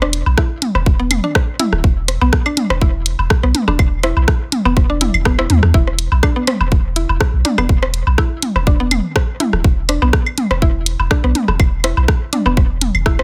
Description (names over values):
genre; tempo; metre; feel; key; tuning
minimal techno; 123 BPM; 4/4; swing 54% on 16ths; unclear; A4 = 441 Hz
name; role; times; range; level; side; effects
mallet-like synth pluck; riff; 0.0-13.1 s; B3 to E4; -25 LUFS; equal; chorus, sidechain pumping, dub echo
punchy sub bass; bass; 0.0-13.2 s; D1 to E2; -19 LUFS; equal; sidechain pumping
organic electronic drum kit; percussion; 0.0-13.2 s; claves, rim click, toms, woodblock; -22 LUFS; equal; overdrive, studio reverb, dub echo
garage drum kit; drums; 0.1-13.2 s; hi-hat, rim click; -20 LUFS; equal; studio reverb
electronic kick drum; drums; 0.4-13.2 s; none; -17 LUFS; equal; studio reverb
room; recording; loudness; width
little or no reverb; none; -15 LUFS; mono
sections
0.0-13.2 A section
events
none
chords
0.0 E5